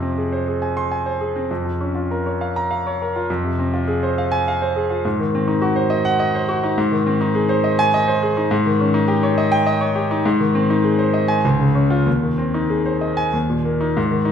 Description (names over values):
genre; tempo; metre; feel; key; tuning
classical, virtuoso piano study; 102 BPM; 3/4; rubato; F minor, Ab major from 6.8 s; A4 = 444 Hz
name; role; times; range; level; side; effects
clear concert grand piano; solo; 0.0-14.3 s; Db2 to C6; -17 LUFS; equal; none
room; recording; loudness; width
wet recital hall reverb, RT60 1.6 s; recorded in a church or concert hall; -17 LUFS; side -8 dB against mid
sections
0.0-14.0 A section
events
none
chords
0.0 Fm; 1.5 Bbm/F; 3.3 Fm; 5.0 Ab7; 6.8 Ab; 8.5 Eb7/Ab; 10.3 Ab; 11.4 Db; 12.1 Ab/Eb; 13.3 Eb5